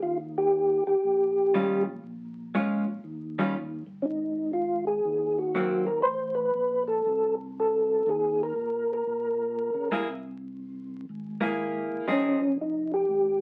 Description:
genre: soul jazz organ trio.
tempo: 119 BPM.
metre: 4/4.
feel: swing 66% on 8ths.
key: Eb mixolydian.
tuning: A4 = 441 Hz.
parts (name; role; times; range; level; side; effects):
percussive tonewheel organ; melody; 0.0-13.4 s; Db4 to C5; -27 LUFS; equal; slow rotary speaker, chorus vibrato.
tonewheel organ; bass; 0.0-13.4 s; F1 to Db3; -41 LUFS; equal; chorus vibrato, slow rotary speaker.
vintage hollow-body jazz guitar; accompaniment; 1.5-5.9, 9.9-12.4 s; Eb3 to Ab4; -30 LUFS; equal; none.
room: moderate studio reverb, RT60 0.6 s.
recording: very old 78 rpm record, vinyl crackle.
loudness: -27 LUFS.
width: mono.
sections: 0.0-13.4 A section.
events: none.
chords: 0.0 Eb9; 2.0 Bbm7; 3.0 Eb9; 4.0 Ab9; 6.1 Amadd9; 8.1 Eb7; 10.1 Caug7; 12.1 Fm7.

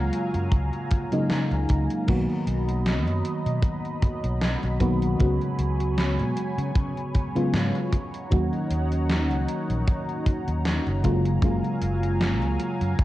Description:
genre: vaporwave.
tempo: 77 BPM.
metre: 4/4.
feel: swing 55% on 16ths.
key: F# major.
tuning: A4 = 440 Hz.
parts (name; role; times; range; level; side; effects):
mellow FM electric piano; accompaniment; 0.0-13.0 s; C#3 to F#4; -26 LUFS; equal; wide subtle chorus, vintage 12-bit sampler grit, tape echo.
lush unison pad; sustained chords; 0.0-13.0 s; F#3 to B5; -33 LUFS; equal; chorus, phaser.
fretless electric bass; bass; 0.0-13.0 s; F#1 to C#3; -26 LUFS; equal; none.
gated 80s digital drum machine; drums; 0.1-13.0 s; crash cymbal, hi-hat, snare drum; -30 LUFS; equal; gated reverb, gated reverb snare, overdrive, vintage 12-bit sampler grit.
kick drum; drums; 0.5-13.0 s; none; -25 LUFS; equal; vintage 12-bit sampler grit.
room: light reverb.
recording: cassette tape.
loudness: -22 LUFS.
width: side -15 dB against mid.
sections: 0.0-13.0 A section.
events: none.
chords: 0.0 F#maj9; 2.1 Bmaj7; 5.2 C#7sus4; 7.9 D#m7; 11.0 F#maj9.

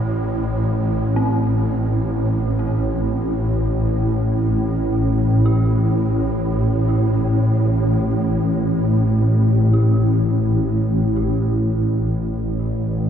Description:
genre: dark ambient drone.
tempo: free time.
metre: none.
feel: none.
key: A minor.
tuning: A4 = 441 Hz.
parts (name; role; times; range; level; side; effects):
swarming drone; drone; 0.0-13.1 s; A1 to A2; -17 LUFS; equal; built-in reverb.
dark detuned synth bell; arpeggios; 1.2-13.1 s; C4 to G4; -33 LUFS; right 1 dB; chorus, phaser, tape echo.
room: wet echo chamber reverb, RT60 2.6 s.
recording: echo-heavy mix.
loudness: -16 LUFS.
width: side -8 dB against mid.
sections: 0.0-11.2 A section; 11.2-13.1 B section.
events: fade-out on synth bell 0.0-11.2.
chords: 0.0 Am7.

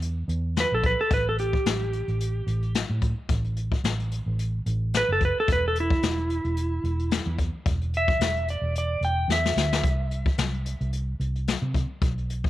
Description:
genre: straight-eighth soul blues.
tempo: 110 BPM.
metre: 4/4.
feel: swing 55% on 16ths.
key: unclear.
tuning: A4 = 440 Hz.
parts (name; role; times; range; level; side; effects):
vintage muted fingered electric bass; bass; 0.0-12.5 s; E1 to C3; -27 LUFS; right 1 dB; none.
jazz brush drum kit; drums; 0.0-12.5 s; hi-hat, kick drum, snare drum; -27 LUFS; left 2 dB; none.
clean lap steel guitar; melody; 0.6-10.9 s; E4 to G5; -26 LUFS; right 1 dB; none.
room: studio reverb.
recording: 1960s-style stereo.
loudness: -23 LUFS.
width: side -14 dB against mid.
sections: 0.0-12.5 A section.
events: drum fill 9.3-9.8.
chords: 0.0 A#(b5, no3); 1.1 N.C.; 9.8 C.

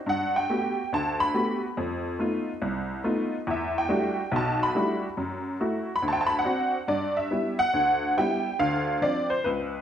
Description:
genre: solo jazz.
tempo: 141 BPM.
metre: 4/4.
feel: swing 66% on 8ths.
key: E minor.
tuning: A4 = 440 Hz.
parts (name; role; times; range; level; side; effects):
honky-tonk upright piano; solo; 0.1-9.8 s; B1 to B5; -24 LUFS; equal; none.
room: wet large studio reverb, RT60 1.2 s.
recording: band playing live in one room.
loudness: -24 LUFS.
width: side -9 dB against mid.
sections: 0.0-6.9 A section; 6.9-9.8 B section.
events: honky-tonk piano solo 0.0-6.9.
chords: 0.1 Gmaj9; 1.8 F7#11; 3.5 Em11; 5.2 F#m7; 6.0 D7; 6.9 G6; 8.6 Dm7.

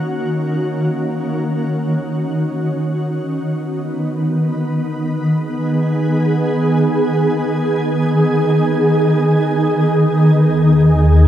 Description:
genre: ambient.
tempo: free time.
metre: none.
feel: none.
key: unclear.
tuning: A4 = 439 Hz.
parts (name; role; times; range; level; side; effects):
shimmering ambient pad; sustained chords; 0.0-11.3 s; Eb3 to Ab4; -14 LUFS; equal; chorus, built-in reverb.
deep rumbling drone; bass; 10.8-11.3 s; Eb2; -12 LUFS; equal; built-in reverb.
room: wet spring reverb, RT60 2.4 s.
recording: none.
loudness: -14 LUFS.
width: side -11 dB against mid.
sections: 0.0-11.3 A section.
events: fade-in on ambient pad 0.0-11.3.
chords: 0.0 Ebm7; 1.1 Abm/Eb; 10.0 Eb5.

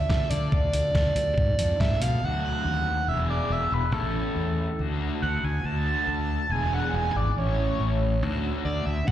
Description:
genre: indie rock.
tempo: 140 BPM.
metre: 4/4.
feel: straight.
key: unclear.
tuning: A4 = 440 Hz.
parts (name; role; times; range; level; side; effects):
overdriven synth lead; melody; 0.0-9.1 s; A4 to A5; -28 LUFS; right 2 dB; distortion, phaser, plate reverb, slapback echo, digital delay.
electric guitar through a small old amp; riff; 0.0-9.1 s; A2 to G#4; -36 LUFS; right 9 dB; analog chorus, slapback echo, digital delay.
raw garage guitar; riff; 0.0-9.1 s; A2 to A4; -33 LUFS; left 8 dB; overdrive, slapback echo.
fuzz fingered electric bass; bass; 0.0-9.1 s; E1 to D3; -27 LUFS; equal; overdrive.
boom bap sampler-style drum kit; drums; 0.1-2.1, 9.1 s; hi-hat, kick drum, snare drum; -25 LUFS; equal; none.
room: light reverb.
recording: live gig heard through the venue's PA, recital hall reverb.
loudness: -23 LUFS.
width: side -12 dB against mid.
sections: 0.0-2.2 A section; 2.2-9.1 B section.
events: none.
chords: 0.0 Dm; 2.2 D; 3.1 E7; 3.9 A; 4.8 D; 6.5 E7; 7.4 A; 8.2 D.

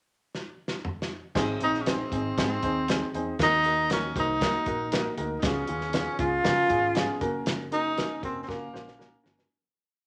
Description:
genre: uptempo 1960s-style soul.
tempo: 118 BPM.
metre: 4/4.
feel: straight.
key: Ab mixolydian.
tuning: A4 = 443 Hz.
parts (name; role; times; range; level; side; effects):
warm soul drum kit; drums; 0.3-9.5 s; crash cymbal, hi-hat, kick drum, snare drum, toms; -33 LUFS; equal; none.
warm upright piano; accompaniment; 1.4-9.4 s; Ab2 to C5; -33 LUFS; equal; none.
vintage muted fingered electric bass; bass; 1.4-9.4 s; F1 to Db3; -40 LUFS; equal; none.
mellow tenor saxophone; melody; 1.6-9.2 s; Bb3 to F4; -29 LUFS; equal; none.
room: wet large studio reverb, RT60 1.0 s.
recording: none.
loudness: -27 LUFS.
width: mono.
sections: 0.0-1.4 pickup bar; 1.4-9.5 verse.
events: drum fill 0.3-1.4, 8.5-9.5; fade-out 7.5-9.5.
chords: 0.0 N.C.; 1.4 Ab; 3.4 Ebm; 5.4 Db7; 7.2 Gb.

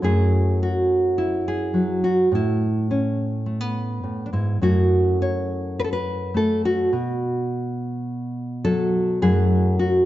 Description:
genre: folk, solo fingerstyle acoustic guitar.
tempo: 104 BPM.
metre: 4/4.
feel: straight.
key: F# minor.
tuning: A4 = 437 Hz.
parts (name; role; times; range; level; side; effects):
nylon-string guitar; solo; 0.0-10.1 s; F#2 to C#5; -19 LUFS; equal; none.
room: moderate concert hall reverb, RT60 1.7 s.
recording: nothing above 7.6 kHz.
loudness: -19 LUFS.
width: side -14 dB against mid.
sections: 0.0-10.1 A section.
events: none.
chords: 0.0 F#m7; 2.3 Aadd9; 4.6 F#m7; 6.9 B5; 9.2 F#m7.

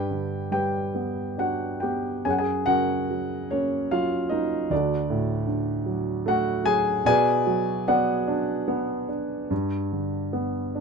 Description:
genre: classical, lyrical solo piano.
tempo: 74 BPM.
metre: 3/4.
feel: uneven beats, rubato.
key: unclear.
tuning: A4 = 440 Hz.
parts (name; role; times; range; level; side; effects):
warm concert grand piano; solo; 0.0-10.8 s; D2 to G#5; -23 LUFS; equal; none.
room: light reverb.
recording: nothing above 10.6 kHz.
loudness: -23 LUFS.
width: side -5 dB against mid.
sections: 0.0-10.8 A section.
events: none.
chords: 0.0 G; 2.3 F#add9; 4.7 D; 7.1 Bm; 9.5 G.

